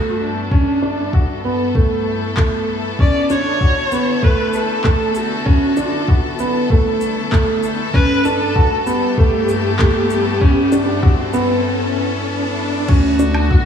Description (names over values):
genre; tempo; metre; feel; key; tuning
piano and strings electronica; 97 BPM; 4/4; straight; unclear; A4 = 441 Hz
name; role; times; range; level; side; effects
warm viola; melody; 0.0-13.7 s; D4 to D5; -22 LUFS; left 1 dB; tape echo
clear chamber string section; sustained chords; 0.0-13.7 s; G2 to A4; -23 LUFS; left 2 dB; sidechain pumping, low-pass filter
warm concert grand piano; riff; 0.0-13.7 s; A3 to F#4; -18 LUFS; right 1 dB; tape echo
electronic kick drum; drums; 0.5-13.6 s; none; -14 LUFS; left 1 dB; none
deep house drum kit; drums; 2.4-13.5 s; crash cymbal, handclaps, shaker, woodblock; -28 LUFS; left 1 dB; overdrive
riser; sound effects; 5.5-12.9 s; none; -26 LUFS; equal; none
rich studio double bass section; bass; 12.9-13.7 s; D2; -18 LUFS; left 1 dB; sidechain pumping
room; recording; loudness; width
moderate concert hall reverb, RT60 2.1 s; small room ambience; -14 LUFS; side -8 dB against mid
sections
0.0-12.9 A section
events
build-up 0.0-12.9; filter sweep on viola 0.0-12.9; riser 5.5-12.9; break 11.7-12.9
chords
0.0 G; 3.0 D; 7.9 G; 12.9 Dmaj7